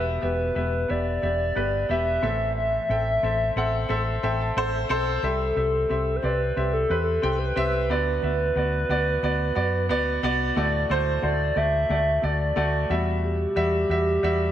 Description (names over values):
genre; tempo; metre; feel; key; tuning
piano-driven pop; 90 BPM; 4/4; straight; E minor; A4 = 440 Hz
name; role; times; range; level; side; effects
hollow clarinet-like synth lead; melody; 0.0-14.5 s; G4 to E5; -26 LUFS; equal; chorus
clear concert grand piano; accompaniment; 0.0-14.5 s; A2 to A5; -26 LUFS; equal; none
hollow-body short-scale fingered electric bass; bass; 0.0-14.5 s; E1 to F#2; -27 LUFS; equal; none
room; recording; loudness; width
light reverb, studio ambience; none; -22 LUFS; side -11 dB against mid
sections
0.0-10.6 A section; 10.6-14.5 B section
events
grand piano fill 3.9-5.2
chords
0.0 Em; 2.2 Am; 5.2 C; 7.9 Bm/D; 10.6 D; 12.9 Emadd9